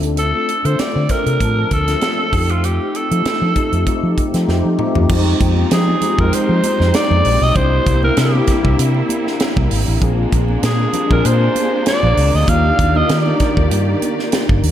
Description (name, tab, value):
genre	polished 1980s jazz-funk pop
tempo	98 BPM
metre	4/4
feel	swing 54% on 16ths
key	unclear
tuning	A4 = 440 Hz
part	mellow tine electric piano	accompaniment	0.0-14.7 s	F3 to A5	-20 LUFS	left 2 dB	ensemble chorus
part	vintage muted fingered electric bass	bass	0.0-14.7 s	G1 to F3	-16 LUFS	equal	none
part	tight funk drum kit	drums	0.0-14.7 s	crash cymbal, hi-hat, kick drum, snare drum, toms	-20 LUFS	right 1 dB	none
part	growling alto saxophone	melody	0.2-13.7 s	F4 to F5	-19 LUFS	equal	tape echo
part	dark studio string section	sustained chords	5.1-14.7 s	C3 to D5	-25 LUFS	right 1 dB	none
part	congas	percussion	5.1-14.6 s	none	-29 LUFS	right 7 dB	none
room	moderate lush hall reverb, RT60 2.0 s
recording	dreamy mix soaked in reverb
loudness	-13 LUFS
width	side -11 dB against mid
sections	0.0-5.1 A section; 5.1-14.7 B section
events	drum fill 4.5-5.1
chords	0.0 Dm7; 2.3 F7; 5.1 Fm7; 7.6 C7; 10.0 Bb7; 12.5 Ebmaj7